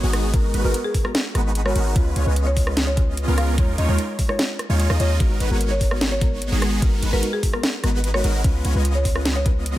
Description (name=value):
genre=future bass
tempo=148 BPM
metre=4/4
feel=half-time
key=G# dorian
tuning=A4 = 439 Hz
part: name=soft round pluck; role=accompaniment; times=0.0-9.8 s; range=G#3 to C#5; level=-30 LUFS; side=left 2 dB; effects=wide subtle chorus, sidechain pumping
part: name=supersaw chords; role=riff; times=0.0-9.7 s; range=G#3 to D#5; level=-27 LUFS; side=right 1 dB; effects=phaser, sidechain pumping
part: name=warm 808-style bass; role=bass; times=0.0-9.7 s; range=G#1 to D#2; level=-21 LUFS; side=equal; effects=sidechain pumping
part: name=trap drum kit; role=drums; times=0.1-9.7 s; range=hi-hat, rim click, snare drum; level=-25 LUFS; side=equal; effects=none
part: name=electronic kick drum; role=drums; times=0.3-9.5 s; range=none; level=-20 LUFS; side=equal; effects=overdrive
part: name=buzzing marimba with medium mallets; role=melody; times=0.6-9.5 s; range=G#4 to E#5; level=-30 LUFS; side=left 1 dB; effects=sidechain pumping, dub echo
room=digital ambience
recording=none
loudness=-18 LUFS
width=side -15 dB against mid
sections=0.0-9.8 A section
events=none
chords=0.0 G#m9; 2.0 C#7; 3.6 D#9sus4; 5.2 G#m9; 8.4 C#7